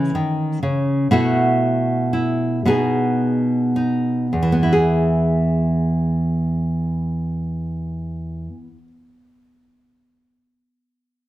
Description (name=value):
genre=folk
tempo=34-42 BPM (dotted quarters)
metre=6/8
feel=straight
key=E major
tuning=A4 = 440 Hz
part: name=nylon-string guitar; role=accompaniment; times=0.0-8.9 s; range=E2 to A4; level=-17 LUFS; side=equal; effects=none
room=light reverb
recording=none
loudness=-17 LUFS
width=side -14 dB against mid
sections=0.0-4.3 A section; 4.3-7.9 B section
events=slowing down 0.0-4.3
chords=0.0 A/C#; 1.1 B7sus4; 2.6 B6; 4.3 E